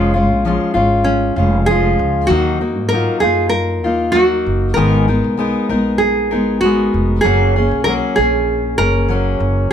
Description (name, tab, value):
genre	pop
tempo	97 BPM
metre	4/4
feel	straight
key	F# major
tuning	A4 = 440 Hz
part	nylon-string guitar	melody	0.0-9.7 s	C#4 to A#4	-17 LUFS	right 2 dB	none
part	fingerpicked steel-string acoustic guitar	accompaniment	0.0-9.7 s	G#2 to A#4	-17 LUFS	left 2 dB	none
part	upright bass	bass	0.0-9.7 s	E#1 to G#2	-19 LUFS	right 1 dB	none
room	light reverb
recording	none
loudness	-13 LUFS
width	side -8 dB against mid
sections	0.0-9.7 A section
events	none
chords	0.0 C#/E#; 2.3 D#madd9; 4.8 G#madd9; 7.2 F#add9